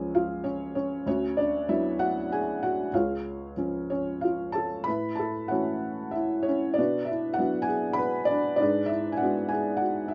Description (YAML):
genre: classical, lyrical solo piano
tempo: 91-103 BPM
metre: 3/4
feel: rubato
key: unclear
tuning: A4 = 442 Hz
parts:
  - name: felt-muted upright piano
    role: solo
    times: 0.0-10.1 s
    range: C#2 to B5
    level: -28 LUFS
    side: equal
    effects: none
room: moderate small room reverb, RT60 0.5 s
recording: nothing above 7.7 kHz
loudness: -28 LUFS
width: mono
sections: 0.0-10.1 A section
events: none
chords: 0.0 C#; 1.1 Bm/D; 2.9 C#; 4.9 A; 6.8 Bm; 8.6 G#dim